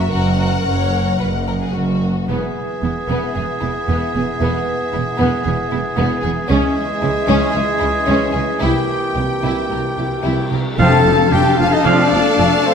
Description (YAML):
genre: cinematic, heroic adventure film score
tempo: 113 BPM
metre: 4/4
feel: straight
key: unclear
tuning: A4 = 439 Hz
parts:
  - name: rich symphonic violin section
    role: melody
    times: 0.0-12.7 s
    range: C5 to A5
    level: -26 LUFS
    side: left 6 dB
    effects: none
  - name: warm symphonic violin section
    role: second line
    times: 0.0-12.7 s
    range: B3 to A5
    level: -24 LUFS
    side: left 4 dB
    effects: none
  - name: rich symphonic viola section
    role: accompaniment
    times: 0.0-12.7 s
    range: F3 to A#4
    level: -24 LUFS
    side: equal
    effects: none
  - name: clear symphonic double bass section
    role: bass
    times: 0.0-12.5 s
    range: E1 to C#2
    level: -22 LUFS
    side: right 3 dB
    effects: none
  - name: dark symphonic cello section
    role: bass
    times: 0.0-12.5 s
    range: C2 to F#2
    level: -22 LUFS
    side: right 2 dB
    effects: none
  - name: clear trombone section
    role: sustained chords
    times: 2.3-12.0 s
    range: E3 to C4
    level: -26 LUFS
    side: right 2 dB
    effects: none
  - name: warm trumpet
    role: stabs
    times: 2.3-12.0 s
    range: G4 to F5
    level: -22 LUFS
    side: right 1 dB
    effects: none
  - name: cymbal swell and tam-tam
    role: percussion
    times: 6.5-12.7 s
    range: none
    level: -26 LUFS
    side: left 4 dB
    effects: none
  - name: clear oboe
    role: second line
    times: 10.8-12.7 s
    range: C4 to A4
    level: -23 LUFS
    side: right 1 dB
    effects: none
  - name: mellow hollow concert flute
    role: second line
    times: 10.8-12.7 s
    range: C5 to A5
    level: -21 LUFS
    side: left 3 dB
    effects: none
  - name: warm clarinet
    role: second line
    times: 10.8-12.7 s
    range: A3 to D4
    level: -24 LUFS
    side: left 1 dB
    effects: none
  - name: mellow French horn section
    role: sustained chords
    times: 10.8-12.7 s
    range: C4 to A4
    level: -19 LUFS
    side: left 6 dB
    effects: none
  - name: timpani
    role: percussion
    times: 10.8-11.6 s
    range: F2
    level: -22 LUFS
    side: left 1 dB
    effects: none
room: wet concert hall reverb, RT60 2.4 s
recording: none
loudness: -15 LUFS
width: side -7 dB against mid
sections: 0.0-2.3 A section; 2.3-10.8 B section; 10.8-12.7 A section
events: band accent 10.8-11.3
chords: 0.0 F#; 2.3 E; 6.5 C#m; 8.6 C7; 10.8 F